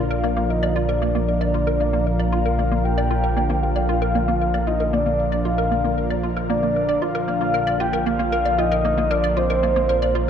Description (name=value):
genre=ambient, sequencer-driven space music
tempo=115 BPM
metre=4/4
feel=straight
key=Bb major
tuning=A4 = 440 Hz
part: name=soft octave-layered synth lead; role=melody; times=0.0-10.3 s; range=C5 to G5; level=-22 LUFS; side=left 1 dB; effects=chorus, tremolo, cassette tape, ping-pong delay
part: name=lush unison pad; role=sustained chords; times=0.0-10.3 s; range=Bb2 to F5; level=-24 LUFS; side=right 1 dB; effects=chorus
part: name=hollow square pluck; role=riff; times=0.0-10.2 s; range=Bb3 to D5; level=-26 LUFS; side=right 1 dB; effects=analog chorus, ping-pong delay
part: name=warm sub bass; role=bass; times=0.0-10.3 s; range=Bb1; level=-25 LUFS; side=equal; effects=none
room=wet spring reverb, RT60 2.4 s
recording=echo-heavy mix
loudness=-18 LUFS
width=side -8 dB against mid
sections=0.0-10.3 A section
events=none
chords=0.0 Bb